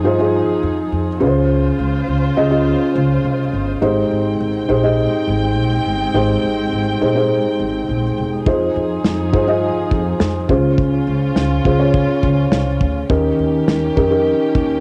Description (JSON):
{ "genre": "piano-driven pop", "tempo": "104 BPM", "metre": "4/4", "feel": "straight", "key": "Ab major", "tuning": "A4 = 444 Hz", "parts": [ { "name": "felt-muted upright piano", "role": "accompaniment", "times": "0.0-14.8 s", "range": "Ab2 to Eb5", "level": "-19 LUFS", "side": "equal", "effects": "cassette tape" }, { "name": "dark chamber string section", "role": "sustained chords", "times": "0.0-14.8 s", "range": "Db3 to G5", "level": "-28 LUFS", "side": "equal", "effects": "cassette tape" }, { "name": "upright bass", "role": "bass", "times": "0.0-14.8 s", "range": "Fb1 to G2", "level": "-22 LUFS", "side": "equal", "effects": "none" }, { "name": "modern studio drum kit", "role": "drums", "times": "8.5-14.7 s", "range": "kick drum, snare drum", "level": "-21 LUFS", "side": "equal", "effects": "cassette tape" } ], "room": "light reverb", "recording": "home recording on cassette", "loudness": "-17 LUFS", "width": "mono", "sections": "0.0-14.8 A section", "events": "none", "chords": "0.0 Fm7; 1.2 Dbmaj7; 3.8 Abmaj7; 8.5 Fm7; 10.5 Dbmaj7; 13.1 Eb7", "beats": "0.34 0.92 | 1.50 2.08 2.66 3.24 | 3.82 4.40 4.98 5.56 | 6.14 6.72 7.30 7.88 | 8.46 9.04 9.62 10.20 | 10.78 11.36 11.94 12.52 | 13.10 13.68 14.26" }